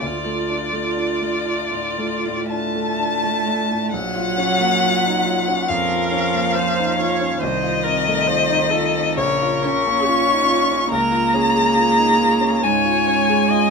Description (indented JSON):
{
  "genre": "classical, slow romantic movement for piano quartet",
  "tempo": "55-72 BPM",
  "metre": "4/4",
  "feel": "rubato",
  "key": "D minor, Bb minor from 3.9 s",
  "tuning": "A4 = 440 Hz",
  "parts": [
    { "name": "rich violin", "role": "melody", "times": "0.0-13.7 s", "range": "Db5 to Db6", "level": "-19 LUFS", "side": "left 4 dB", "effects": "none" },
    { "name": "rich cello", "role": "second line", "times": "0.0-13.7 s", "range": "Db3 to F4", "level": "-23 LUFS", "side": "right 6 dB", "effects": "none" },
    { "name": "clear grand piano", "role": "accompaniment", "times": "0.0-13.7 s", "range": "Bb1 to F4", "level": "-24 LUFS", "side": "left 3 dB", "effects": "none" },
    { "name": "rich viola", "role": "accompaniment", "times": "0.0-13.7 s", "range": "F4 to Eb5", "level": "-26 LUFS", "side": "right 4 dB", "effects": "none" }
  ],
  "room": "light reverb",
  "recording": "minimal, uncompressed stereo recording",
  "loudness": "-16 LUFS",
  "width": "side -5 dB against mid",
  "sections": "0.0-3.9 A section; 3.9-13.7 B section",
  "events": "none",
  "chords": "0.0 Dm; 3.9 Bbm; 7.4 F7/C; 9.2 Bbm; 10.9 Db",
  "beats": "| 0.02 0.97 1.97 2.99 | 3.92 4.81 5.68 6.56 | 7.41 8.27 9.18 10.08 | 10.92 11.75 12.62 13.49"
}